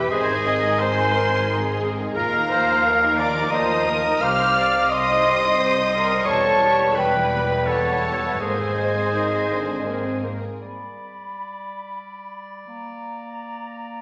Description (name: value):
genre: cinematic, emotional film score for orchestra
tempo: 87 BPM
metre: 3/4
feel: rubato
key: unclear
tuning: A4 = 439 Hz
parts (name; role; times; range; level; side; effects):
- rich studio violin section; melody; 0.0-10.2 s; G5 to F6; -32 LUFS; equal; none
- clear clarinet; second line; 0.0-14.0 s; G3 to F5; -27 LUFS; equal; none
- clear oboe; second line; 0.0-14.0 s; G4 to F5; -30 LUFS; equal; none
- flute section; second line; 0.0-14.0 s; Eb5 to D6; -28 LUFS; equal; none
- warm studio violin section; second line; 0.0-10.6 s; Bb3 to C5; -34 LUFS; equal; none
- rich studio viola section; accompaniment; 0.0-10.2 s; G4 to Eb5; -29 LUFS; equal; none
- mellow French horn section; sustained chords; 0.0-10.6 s; D3 to C5; -31 LUFS; equal; none
- rich studio double bass section; bass; 0.0-10.4 s; E1 to Eb2; -34 LUFS; equal; none
- warm studio cello section; bass; 0.0-10.4 s; C2 to Ab2; -34 LUFS; equal; none
room: wet scoring stage reverb, RT60 1.6 s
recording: none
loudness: -20 LUFS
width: mono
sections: 0.0-10.6 A section; 10.6-14.0 B section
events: none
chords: 0.1 Abadd9; 2.2 Ebsus2; 4.2 Cm; 6.3 Em; 8.4 Abadd9; 10.6 G; 12.7 Bb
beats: | 0.12 0.80 1.48 | 2.16 2.85 3.53 | 4.21 4.90 5.59 | 6.27 6.97 7.68 | 8.41 9.14 9.87 | 10.60 11.30 11.99 | 12.67 13.35